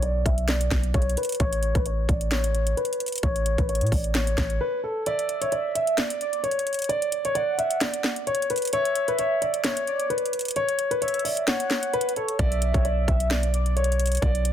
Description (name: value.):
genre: hip hop, trap.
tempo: 131 BPM.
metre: 4/4.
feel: half-time.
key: B minor.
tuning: A4 = 440 Hz.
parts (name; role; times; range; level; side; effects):
dark grand piano; melody; 0.0-14.5 s; A4 to E5; -26 LUFS; equal; low-pass filter, ping-pong delay.
long sustained 808-style bass; bass; 0.0-4.6, 12.4-14.5 s; A1 to A2; -24 LUFS; equal; none.
trap drum kit; drums; 0.0-14.5 s; hi-hat, kick drum, snare drum; -26 LUFS; equal; none.
warm velvety synth lead; second line; 5.1-13.8 s; C#5 to F#5; -31 LUFS; right 2 dB; chorus, ping-pong delay.
room: light reverb.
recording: dense, heavily limited modern master.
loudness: -22 LUFS.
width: side -10 dB against mid.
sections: 0.0-14.5 A section.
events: filter sweep on grand piano 0.0-5.1; break 4.6-5.1; kick muted 5.1-12.4.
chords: 0.0 Bm; 1.4 A; 5.1 N.C.; 12.4 Bm.